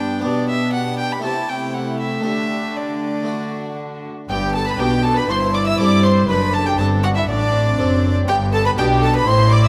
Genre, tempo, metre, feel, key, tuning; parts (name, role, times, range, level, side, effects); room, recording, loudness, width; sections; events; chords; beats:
classical, baroque-style concerto movement with solo episodes; 120 BPM; 4/4; straight; G major; A4 = 440 Hz
rich chamber violin section; melody; 0.0-9.7 s; F#4 to E6; -30 LUFS; equal
warm violin; melody; 0.0-9.7 s; D5 to E6; -26 LUFS; equal
warm chamber violin section; second line; 0.0-9.7 s; D4 to E5; -26 LUFS; equal
harpsichord; accompaniment; 0.0-9.7 s; F#2 to A4; -30 LUFS; equal
warm chamber viola section; accompaniment; 0.0-9.7 s; A3 to E4; -28 LUFS; equal
rich chamber cello section; bass; 0.0-9.7 s; F#2 to G3; -24 LUFS; equal
warm studio double bass section; bass; 4.3-9.7 s; F#1 to G2; -24 LUFS; equal
moderate scoring stage reverb, RT60 2.0 s; -18 LUFS; mono
0.0-4.3 A section; 4.3-9.7 B section
0.2 G/B; 1.2 Am7/C; 2.3 Dsus4; 3.3 D; 4.3 G; 5.3 Am7/G; 6.3 D7/F#; 8.3 G
| 0.24 0.74 1.23 1.74 | 2.25 2.77 3.28 3.79 | 4.30 4.80 5.29 5.79 | 6.29 6.79 7.29 7.79 | 8.28 8.78 9.28